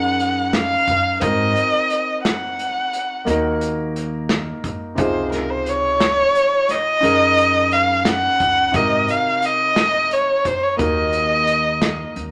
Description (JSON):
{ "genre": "progressive instrumental, band music in an uneven meter", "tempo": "176 BPM (eighths)", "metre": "11/8", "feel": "straight", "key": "unclear", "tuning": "A4 = 441 Hz", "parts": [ { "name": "dark violin", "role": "melody", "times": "0.0-12.1 s", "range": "Bb4 to Gb5", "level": "-20 LUFS", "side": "equal", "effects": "none" }, { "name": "warm concert grand piano", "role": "accompaniment", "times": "0.0-12.3 s", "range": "C3 to Bb4", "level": "-26 LUFS", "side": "equal", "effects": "none" }, { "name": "upright bass", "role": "bass", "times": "0.0-12.3 s", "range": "Db2 to Ab2", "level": "-30 LUFS", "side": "equal", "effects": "none" }, { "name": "loose indie drum kit", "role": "drums", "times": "0.2-12.3 s", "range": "hi-hat, kick drum, snare drum", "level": "-27 LUFS", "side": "equal", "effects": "none" } ], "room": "wet studio reverb, RT60 0.6 s", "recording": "none", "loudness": "-18 LUFS", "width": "mono", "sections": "0.0-12.3 A section", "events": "none", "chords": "0.0 Gb6; 1.2 Ab7; 3.3 Ebm; 5.0 Dbmaj7; 7.0 Gb6; 8.7 Ab7; 10.8 Ebm", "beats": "0.19 0.54 0.88 | 1.22 1.56 1.90 2.24 2.58 2.92 3.27 3.61 3.95 4.29 4.63 | 4.97 5.32 5.66 6.00 6.34 6.68 7.03 7.37 7.71 8.05 8.39 | 8.73 9.08 9.42 9.76 10.10 10.45 10.79 11.13 11.47 11.81 12.16" }